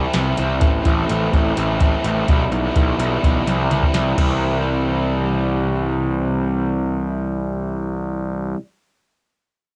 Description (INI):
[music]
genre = indie rock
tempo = 127 BPM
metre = 4/4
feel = straight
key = C major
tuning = A4 = 440 Hz
[part]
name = biting overdriven guitar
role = riff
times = 0.0-8.6 s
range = A2 to E4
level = -24 LUFS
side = equal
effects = none
[part]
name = fuzz picked electric bass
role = bass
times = 0.0-8.5 s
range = A1 to C2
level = -24 LUFS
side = equal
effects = overdrive
[part]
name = soft vintage rhythm box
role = drums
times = 0.1-4.3 s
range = hi-hat, kick drum, ride cymbal, snare drum, toms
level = -21 LUFS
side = equal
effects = cassette tape
[sound]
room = little or no reverb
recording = home recording on cassette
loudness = -20 LUFS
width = mono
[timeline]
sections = 0.0-4.4 A section; 4.4-8.2 B section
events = drum fill 3.5-4.4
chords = 0.0 C; 0.6 Am; 2.3 Em/B; 3.5 C